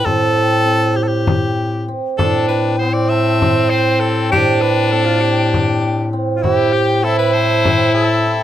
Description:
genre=contemporary instrumental, chamber music in an uneven meter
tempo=198 BPM (eighths)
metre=7/8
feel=straight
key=A minor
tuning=A4 = 440 Hz
part: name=edgy alto saxophone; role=melody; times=0.0-8.4 s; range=E4 to E5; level=-19 LUFS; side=equal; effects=none
part: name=cimbalom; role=arpeggios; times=0.0-8.4 s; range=C4 to A4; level=-19 LUFS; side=right 5 dB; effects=none
part: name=mellow bass clarinet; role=bass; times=0.1-8.4 s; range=A2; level=-18 LUFS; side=left 2 dB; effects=none
part: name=frame drum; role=percussion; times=0.1-7.9 s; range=none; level=-20 LUFS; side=left 3 dB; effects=none
part: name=stopped French horn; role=second line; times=2.2-8.4 s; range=C4 to G4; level=-20 LUFS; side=left 4 dB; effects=none
room=light reverb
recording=close, detailed microphones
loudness=-13 LUFS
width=side -11 dB against mid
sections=0.0-8.4 A section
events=none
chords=0.0 Am7

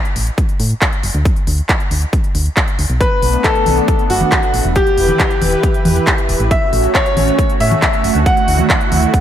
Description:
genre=uplifting trance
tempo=137 BPM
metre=4/4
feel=straight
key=B minor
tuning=A4 = 440 Hz
part: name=big-room dance drum kit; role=drums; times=0.1-9.2 s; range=congas, handclaps, hi-hat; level=-19 LUFS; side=equal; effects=overdrive, studio reverb
part: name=solid FM bass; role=bass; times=0.2-9.1 s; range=D1 to A2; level=-17 LUFS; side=equal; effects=sidechain pumping
part: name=electronic kick drum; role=drums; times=0.4-9.2 s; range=none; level=-16 LUFS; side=equal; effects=overdrive, studio reverb
part: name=bright grand piano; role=second line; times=3.0-9.2 s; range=F#4 to F#5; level=-16 LUFS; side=left 1 dB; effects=tape echo
part: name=lush unison pad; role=sustained chords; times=3.0-9.2 s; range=D3 to B4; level=-19 LUFS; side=right 2 dB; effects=chorus, phaser, sidechain pumping
room=moderate church reverb, RT60 2.5 s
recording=dreamy mix soaked in reverb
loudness=-12 LUFS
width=side -10 dB against mid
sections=0.0-9.2 A section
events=none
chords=0.0 N.C.; 3.0 Bm7; 4.8 Em; 6.5 A6; 8.3 Dadd9

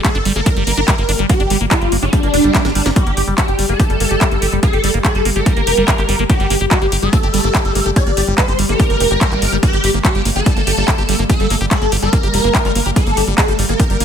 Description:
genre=psychedelic trance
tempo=144 BPM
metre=4/4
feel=straight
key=G minor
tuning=A4 = 441 Hz
part: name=swarming rave lead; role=melody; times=0.0-14.0 s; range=D4 to D5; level=-19 LUFS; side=equal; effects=chorus, phaser, sidechain pumping, tape echo
part: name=evolving wavetable pad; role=sustained chords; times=0.0-14.0 s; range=G3 to G4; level=-24 LUFS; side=left 2 dB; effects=chorus, built-in reverb, sidechain pumping
part: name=liquid acid bass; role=riff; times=0.0-14.0 s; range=G3 to G4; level=-22 LUFS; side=right 1 dB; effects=phaser, auto-pan, sidechain pumping, tape echo
part: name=electronic kick drum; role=drums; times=0.0-13.9 s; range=none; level=-16 LUFS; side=equal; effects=overdrive, small room ambience
part: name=techno drum kit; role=drums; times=0.0-14.0 s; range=handclaps, hi-hat, snare drum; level=-21 LUFS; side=left 1 dB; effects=small room ambience
part: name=tight sequencer bass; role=bass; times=0.1-14.0 s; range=F1 to A1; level=-19 LUFS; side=equal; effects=tube saturation
part: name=swell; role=sound effects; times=2.3-3.0 s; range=none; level=-24 LUFS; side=right 1 dB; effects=none
room=little or no reverb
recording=none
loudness=-12 LUFS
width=side -8 dB against mid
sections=0.0-14.0 A section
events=swell 2.3-3.0; drum fill 2.5-3.0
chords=0.0 G5

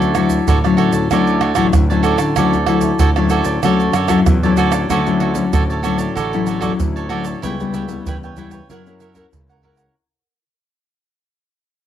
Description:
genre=samba and choro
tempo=95 BPM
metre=4/4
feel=straight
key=D major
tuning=A4 = 440 Hz
part: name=cavaquinho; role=accompaniment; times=0.0-9.9 s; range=E4 to G5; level=-20 LUFS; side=right 6 dB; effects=cassette tape, plate reverb
part: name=nylon-string guitar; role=accompaniment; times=0.0-9.9 s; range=A2 to A#4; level=-18 LUFS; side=left 5 dB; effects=cassette tape, plate reverb
part: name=growling fingered electric bass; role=bass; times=0.0-9.9 s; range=A1 to D3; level=-22 LUFS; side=equal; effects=overdrive
part: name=egg shaker, surdo, pandeiro and tamborim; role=percussion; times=0.0-9.9 s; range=none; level=-19 LUFS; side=right 2 dB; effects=none
room=moderate studio reverb, RT60 0.6 s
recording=home recording on cassette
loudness=-14 LUFS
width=side -10 dB against mid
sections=0.0-4.9 A section; 4.9-10.0 B section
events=fade-out 4.9-10.0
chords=0.0 Dmaj9; 7.4 C#m7b5; 8.7 F#7

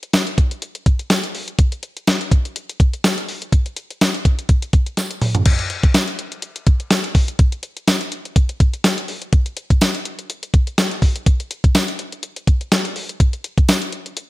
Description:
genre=pop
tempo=124 BPM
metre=4/4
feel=swing 55% on 16ths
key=none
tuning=none
part: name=clean 12-bit digital drum machine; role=drums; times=0.0-14.3 s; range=crash cymbal, hi-hat, kick drum, snare drum, tambourine, toms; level=-15 LUFS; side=equal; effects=none
part: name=tambourine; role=percussion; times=0.1-13.8 s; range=none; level=-31 LUFS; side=right 4 dB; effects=none
room=digital ambience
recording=none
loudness=-16 LUFS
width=side -18 dB against mid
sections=0.0-5.5 A section; 5.5-14.3 B section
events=drum fill 5.0-5.5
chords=none

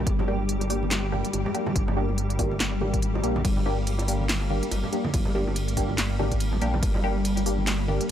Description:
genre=deep dubstep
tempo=142 BPM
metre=4/4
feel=swing 58% on 16ths, half-time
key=G phrygian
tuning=A4 = 438 Hz
part: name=granular cloud pad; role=sustained chords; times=0.0-8.1 s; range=G3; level=-33 LUFS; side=left 1 dB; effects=built-in reverb
part: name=dark detuned saw bass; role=bass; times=0.0-8.0 s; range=G1 to Bb1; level=-28 LUFS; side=equal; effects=none
part: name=flickering grainy texture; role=texture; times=0.0-8.1 s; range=G3 to G4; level=-34 LUFS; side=left 2 dB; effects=built-in reverb
part: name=deep house drum kit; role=drums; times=0.1-8.1 s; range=handclaps, hi-hat, ride cymbal, snare drum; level=-32 LUFS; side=equal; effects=none
part: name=electronic kick drum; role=drums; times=0.1-6.9 s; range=none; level=-27 LUFS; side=equal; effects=none
part: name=congas and bongos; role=percussion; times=0.2-8.0 s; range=none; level=-35 LUFS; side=right 3 dB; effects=dub echo
part: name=filtered dub chord stab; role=stabs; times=0.3-8.1 s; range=Bb3 to G4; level=-31 LUFS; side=left 1 dB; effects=phaser, dub echo
room=little or no reverb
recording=dry, gritty hardware recording, transformer saturation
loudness=-23 LUFS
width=side -10 dB against mid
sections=0.0-8.1 A section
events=none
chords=0.0 Gm

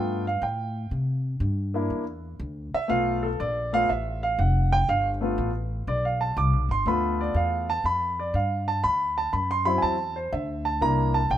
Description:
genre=jazz, big band swing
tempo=121 BPM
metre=4/4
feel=swing 69% on 8ths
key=G mixolydian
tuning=A4 = 443 Hz
part: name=clear grand piano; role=accompaniment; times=0.0-11.4 s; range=F#3 to D6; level=-25 LUFS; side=right 1 dB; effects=none
part: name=upright bass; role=bass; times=0.0-11.4 s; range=F1 to C3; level=-27 LUFS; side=equal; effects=none
room=light reverb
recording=minimal, uncompressed stereo recording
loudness=-23 LUFS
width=side -11 dB against mid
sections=0.0-11.4 A section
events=grand piano solo 0.0-11.4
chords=0.0 G9; 0.9 C9; 2.9 G9; 8.8 D9; 10.8 C9

